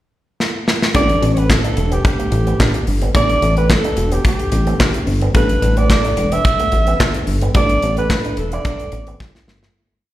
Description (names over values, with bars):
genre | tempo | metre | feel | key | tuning
early-eighties boogie funk | 109 BPM | 4/4 | straight | unclear | A4 = 438 Hz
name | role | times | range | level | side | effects
modern studio drum kit | drums | 0.4-9.7 s | handclaps, hi-hat, kick drum, snare drum | -17 LUFS | equal | none
FM electric piano with tremolo | accompaniment | 0.9-9.7 s | G3 to A4 | -25 LUFS | left 3 dB | phaser, slapback echo
electric guitar with an envelope filter | riff | 0.9-9.7 s | G3 to E4 | -27 LUFS | right 4 dB | lush chorus, slapback echo
chorused synth bass | bass | 0.9-9.7 s | E1 to A1 | -17 LUFS | equal | none
breathy alto saxophone | melody | 1.0-9.2 s | G4 to E5 | -20 LUFS | right 2 dB | slapback echo
room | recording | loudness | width
light reverb | live gig heard through the venue's PA, recital hall reverb | -14 LUFS | side -14 dB against mid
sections
0.0-0.9 pickup bar; 0.9-9.8 verse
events
drum fill 0.4-0.9, 9.2-9.8; fade-out 7.6-9.8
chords
0.0 N.C.; 0.9 A9sus4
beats
0.40 | 0.95 1.50 2.05 2.60 | 3.15 3.70 4.25 4.80 | 5.35 5.90 6.45 7.00 | 7.55 8.10 8.65 9.20